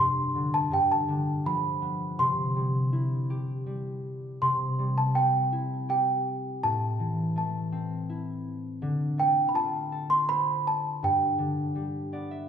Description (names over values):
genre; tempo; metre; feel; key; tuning
children's music, lullaby; 82 BPM; 3/4; straight; C major; A4 = 439 Hz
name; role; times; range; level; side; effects
celesta; melody; 0.0-12.5 s; G5 to C6; -26 LUFS; right 2 dB; none
concert harp; accompaniment; 0.0-12.5 s; G2 to E5; -29 LUFS; left 1 dB; none
room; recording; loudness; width
wet recital hall reverb, RT60 1.7 s; recorded in a church or concert hall; -25 LUFS; side -8 dB against mid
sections
0.0-4.4 A section; 4.4-12.5 A section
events
harp fill 11.8-12.5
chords
0.0 Gsus4; 0.7 G7; 2.2 C; 6.6 Am; 8.8 Dm7; 11.0 G